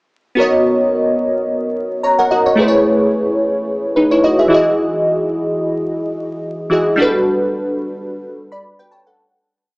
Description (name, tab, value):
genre	amapiano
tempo	109 BPM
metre	4/4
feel	swing 55% on 16ths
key	B major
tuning	A4 = 440 Hz
part	glassy digital keys	solo	0.4-9.3 s	E3 to B5	-13 LUFS	equal	chorus
room	light reverb, digital ambience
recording	vinyl crackle, small speaker sound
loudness	-13 LUFS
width	side -27 dB against mid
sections	0.4-9.2 drop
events	drop 0.4-9.2; fade-out 7.0-9.2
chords	0.4 Bmaj9; 2.6 Amaj9; 4.5 Emaj9; 7.0 Gmaj9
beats	| 0.38 0.93 1.48 2.03 | 2.58 3.13 3.68 4.23 | 4.78 5.33 5.88 6.43 | 6.98 7.53 8.08 8.63